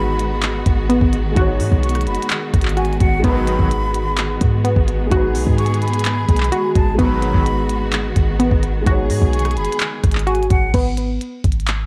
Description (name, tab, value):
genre	hip hop, trap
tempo	128 BPM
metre	4/4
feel	half-time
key	G# minor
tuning	A4 = 442 Hz
part	breathy silver concert flute	second line	0.0-10.7 s	F#5 to C#6	-28 LUFS	equal	tape echo
part	dark baby grand piano	accompaniment	0.0-10.8 s	G#3 to C#5	-28 LUFS	equal	none
part	dark symphonic string section	sustained chords	0.0-10.7 s	D#3 to G#4	-28 LUFS	equal	none
part	warbly dusty pluck	arpeggios	0.0-11.9 s	B3 to F#4	-24 LUFS	equal	chorus, low-pass filter, tape echo
part	clean 808-style bass	bass	0.0-11.9 s	F#1 to G#2	-22 LUFS	equal	none
part	glitchy drum kit	drums	0.2-11.8 s	crash cymbal, handclaps, hi-hat, kick drum, rim click	-22 LUFS	equal	none
part	big bright polysynth	stabs	3.2-3.7, 7.0-7.4 s	B2 to F#3	-29 LUFS	equal	chorus, tape echo
room	little or no reverb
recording	none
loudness	-17 LUFS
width	mono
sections	0.0-10.7 A section; 10.7-11.9 B section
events	none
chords	0.0 G#m7; 10.7 G#m